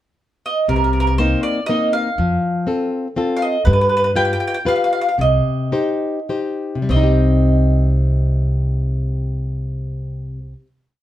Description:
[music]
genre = italian folk, Italian serenade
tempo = 98-122 BPM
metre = 3/4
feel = straight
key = C dorian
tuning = A4 = 442 Hz
[part]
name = mandolin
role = melody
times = 0.5-10.5 s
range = Bb4 to G5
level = -19 LUFS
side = right 2 dB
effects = none
[part]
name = flamenco guitar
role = accompaniment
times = 0.7-10.7 s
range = C3 to C5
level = -20 LUFS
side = left 2 dB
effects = none
[part]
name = upright bass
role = bass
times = 0.7-10.5 s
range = C2 to G2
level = -18 LUFS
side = right 1 dB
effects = none
[sound]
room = moderate studio reverb, RT60 0.6 s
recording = band playing live in one room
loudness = -16 LUFS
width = side -13 dB against mid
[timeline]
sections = 0.0-0.7 pickup bar; 0.7-6.9 A section; 6.9-10.5 final chord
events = slowing down 3.7-6.9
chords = 0.0 N.C.; 0.7 Cm7; 2.2 F; 3.7 G7; 5.2 Cm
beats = 0.20 | 0.69 1.19 1.69 | 2.18 2.67 3.17 | 3.66 4.16 4.67 | 5.19 5.73 6.31 | 6.91 7.51 8.12 | 8.72 9.33 9.94

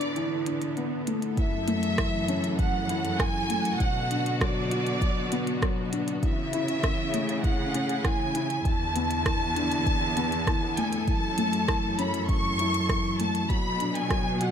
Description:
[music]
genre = piano and strings electronica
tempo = 99 BPM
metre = 4/4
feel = straight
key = F# minor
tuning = A4 = 438 Hz
[part]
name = rich studio violin section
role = melody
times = 0.0-14.5 s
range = D5 to C#6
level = -30 LUFS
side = equal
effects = digital delay
[part]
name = rich studio string section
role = sustained chords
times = 0.0-14.5 s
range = C#3 to A4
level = -36 LUFS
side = right 2 dB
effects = sidechain pumping
[part]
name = felt-muted upright piano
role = riff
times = 0.0-14.5 s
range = E3 to F#4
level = -30 LUFS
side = left 2 dB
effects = digital delay
[part]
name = rich studio cello section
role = bass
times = 0.0-14.5 s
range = E2 to C#3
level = -33 LUFS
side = equal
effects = tube saturation, sidechain pumping, high-pass filter
[part]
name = minimal click drum kit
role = drums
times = 0.0-14.5 s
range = hi-hat, rim click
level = -33 LUFS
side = right 2 dB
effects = none
[part]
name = electronic kick drum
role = drums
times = 1.4-14.2 s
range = none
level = -28 LUFS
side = equal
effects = none
[sound]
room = moderate recital hall reverb, RT60 1.5 s, small room ambience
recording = none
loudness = -24 LUFS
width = side -8 dB against mid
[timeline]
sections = 0.0-1.4 A section; 1.4-14.5 B section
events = build-up 0.0-1.4; drop 1.4-14.5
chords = 0.0 E7sus4; 1.4 F#m7; 3.8 Bm7; 6.2 Amaj7/C#; 8.7 E7sus4; 11.1 F#m7; 13.5 Bm7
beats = 0.17 0.78 | 1.38 1.99 2.59 3.20 | 3.81 4.41 5.02 5.62 | 6.23 6.83 7.44 8.05 | 8.65 9.26 9.87 10.47 | 11.08 11.68 12.29 12.90 | 13.50 14.11

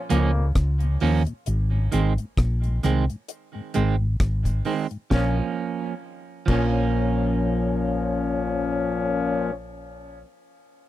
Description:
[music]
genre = roots reggae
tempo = 66 BPM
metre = 4/4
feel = swing 56% on 16ths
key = Bb minor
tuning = A4 = 441 Hz
[part]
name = clear trombone section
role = second line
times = 0.1-9.5 s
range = F2 to Db4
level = -30 LUFS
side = left 3 dB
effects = tape echo
[part]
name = clean electric guitar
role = accompaniment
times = 0.1-10.3 s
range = Eb3 to Db4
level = -27 LUFS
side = right 7 dB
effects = tape echo
[part]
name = mellow tonewheel organ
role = accompaniment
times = 0.1-9.5 s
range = Ab2 to Db4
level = -28 LUFS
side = left 5 dB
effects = overdrive
[part]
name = hollow-body short-scale fingered electric bass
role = bass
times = 0.1-10.2 s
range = Ab1 to Eb2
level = -23 LUFS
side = equal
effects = none
[part]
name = deep reggae drum kit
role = drums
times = 0.1-6.8 s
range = crash cymbal, hi-hat, kick drum, rim click, snare drum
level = -24 LUFS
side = equal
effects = none
[sound]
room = light reverb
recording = dry, close 1970s-style studio recording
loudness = -21 LUFS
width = side -14 dB against mid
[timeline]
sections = 0.0-5.1 A section; 5.1-8.8 B section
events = none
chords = 0.0 Bbm; 1.5 Ab; 5.1 Bbm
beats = 0.56 | 1.47 2.38 3.29 4.20 | 5.11 6.02 6.93 7.85

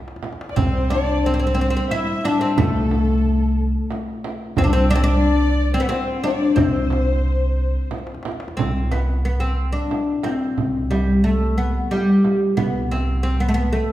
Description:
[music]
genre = Persian modal ensemble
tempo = 90 BPM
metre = 3/4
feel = straight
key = C dastgah mahur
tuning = A4 = 440 Hz
[part]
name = tombak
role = percussion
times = 0.0-8.6 s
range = none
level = -28 LUFS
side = equal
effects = none
[part]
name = frame drum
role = percussion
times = 0.2-13.1 s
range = none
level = -27 LUFS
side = right 4 dB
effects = none
[part]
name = warm studio violin section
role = second line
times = 0.5-7.9 s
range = A4 to E5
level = -26 LUFS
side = left 2 dB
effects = none
[part]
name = oud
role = melody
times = 0.6-13.9 s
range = G3 to E4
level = -20 LUFS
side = left 1 dB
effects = none
[part]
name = upright bass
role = bass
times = 0.6-13.8 s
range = C2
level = -21 LUFS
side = equal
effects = none
[sound]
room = wet recital hall reverb, RT60 1.7 s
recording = heard from further back in the room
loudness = -17 LUFS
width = side -14 dB against mid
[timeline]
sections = 0.0-8.6 A section; 8.6-13.9 B section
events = drum fill 0.0-0.6, 7.9-8.6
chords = none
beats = | 0.57 1.24 1.90 | 2.57 3.24 3.91 | 4.57 5.24 5.91 | 6.58 7.25 7.92 | 8.59 9.25 9.92 | 10.59 11.26 11.93 | 12.60 13.27

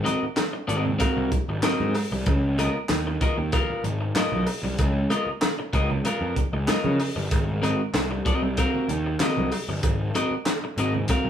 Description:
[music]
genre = funk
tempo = 95 BPM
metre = 4/4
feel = straight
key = Ab mixolydian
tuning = A4 = 439 Hz
[part]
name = electric guitar at the edge of break-up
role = accompaniment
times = 0.0-11.3 s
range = Cb4 to F5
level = -26 LUFS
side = left 1 dB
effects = none
[part]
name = crisp fusion drum kit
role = drums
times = 0.1-11.2 s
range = handclaps, hi-hat, kick drum, snare drum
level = -26 LUFS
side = equal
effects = none
[part]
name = congas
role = percussion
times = 0.1-11.2 s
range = none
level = -35 LUFS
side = right 2 dB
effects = none
[part]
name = cowbell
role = percussion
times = 0.1-11.2 s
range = none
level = -34 LUFS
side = right 1 dB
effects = none
[part]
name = fuzz picked electric bass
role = bass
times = 0.2-11.3 s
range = G1 to Db3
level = -26 LUFS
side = equal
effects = overdrive
[sound]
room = moderate studio reverb, RT60 0.7 s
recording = band playing live in one room, small room ambience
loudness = -22 LUFS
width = side -9 dB against mid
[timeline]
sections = 0.0-11.3 A section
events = none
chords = 0.0 Ab9; 2.3 Db13; 7.3 Ab9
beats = 0.38 1.01 1.64 | 2.27 2.90 3.53 4.16 | 4.79 5.42 6.05 6.68 | 7.31 7.94 8.57 9.20 | 9.83 10.46 11.09

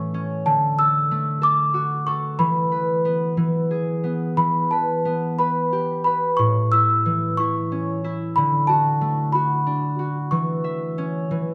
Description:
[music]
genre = children's music, lullaby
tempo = 61 BPM (dotted quarters)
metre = 6/8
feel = rubato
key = unclear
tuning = A4 = 440 Hz
[part]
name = celesta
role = melody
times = 0.0-11.5 s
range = A5 to E6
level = -23 LUFS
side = equal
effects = none
[part]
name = concert harp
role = accompaniment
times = 0.0-11.5 s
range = A2 to E5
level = -25 LUFS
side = equal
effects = none
[sound]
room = moderate recital hall reverb, RT60 1.5 s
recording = dark, warm production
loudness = -21 LUFS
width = mono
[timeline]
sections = 0.0-11.5 A section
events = harp fill 11.3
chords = 0.5 D; 2.4 E5; 3.4 E; 4.4 Em; 6.4 A; 8.4 D; 10.3 C#m/E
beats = | 0.46 1.43 | 2.39 3.38 | 4.38 5.39 | 6.39 7.38 | 8.36 9.34 | 10.31 11.30

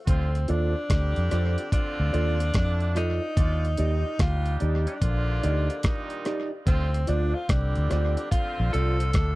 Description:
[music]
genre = roots reggae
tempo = 73 BPM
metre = 4/4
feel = swing 64% on 16ths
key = unclear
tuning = A4 = 440 Hz
[part]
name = warm tenor saxophone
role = melody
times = 0.1-9.4 s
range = C4 to A4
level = -31 LUFS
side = left 1 dB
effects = tape echo
[part]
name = clear horn section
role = second line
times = 0.1-9.4 s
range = A2 to D5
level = -36 LUFS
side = right 3 dB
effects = tape echo
[part]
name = vintage muted fingered electric bass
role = bass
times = 0.1-9.4 s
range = Bb1 to F2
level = -24 LUFS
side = equal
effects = none
[part]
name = dusty soul sampler-style drum kit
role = drums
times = 0.1-9.4 s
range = hi-hat, kick drum, rim click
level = -25 LUFS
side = equal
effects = overdrive
[part]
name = mellow electric guitar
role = accompaniment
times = 0.5-9.0 s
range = Eb4 to D5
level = -35 LUFS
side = right 6 dB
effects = tape echo
[part]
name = dark baby grand piano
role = stabs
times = 0.5-9.0 s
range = F4 to Eb5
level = -35 LUFS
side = left 4 dB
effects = none
[sound]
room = little or no reverb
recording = dry, close 1970s-style studio recording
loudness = -23 LUFS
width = side -19 dB against mid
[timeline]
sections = 0.1-9.4 A section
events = none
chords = 0.1 Dm7; 3.4 Ebmaj7; 6.7 Dm7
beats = | 0.07 0.90 1.72 2.55 | 3.37 4.19 5.02 5.84 | 6.67 7.49 8.32 9.14

